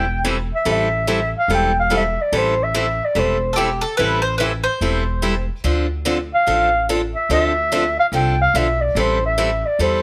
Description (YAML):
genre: acoustic string swing (jazz manouche)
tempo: 145 BPM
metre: 4/4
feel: swing 62% on 8ths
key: A minor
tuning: A4 = 440 Hz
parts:
  - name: breathy clarinet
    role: melody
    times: 0.0-3.6, 6.3-10.0 s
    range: C5 to G5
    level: -20 LUFS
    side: equal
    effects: none
  - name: picked steel-string acoustic guitar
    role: accompaniment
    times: 0.0-10.0 s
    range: D3 to A4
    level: -24 LUFS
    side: equal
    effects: none
  - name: upright bass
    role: bass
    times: 0.0-10.0 s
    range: E1 to E2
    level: -26 LUFS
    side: equal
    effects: none
  - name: bowl-back mandolin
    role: second line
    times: 3.5-5.4 s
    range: G4 to C5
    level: -23 LUFS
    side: equal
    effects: none
room: light reverb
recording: none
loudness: -19 LUFS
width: mono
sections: 0.0-10.0 A section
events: none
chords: 0.0 Am7; 5.6 Dm7; 9.0 Am7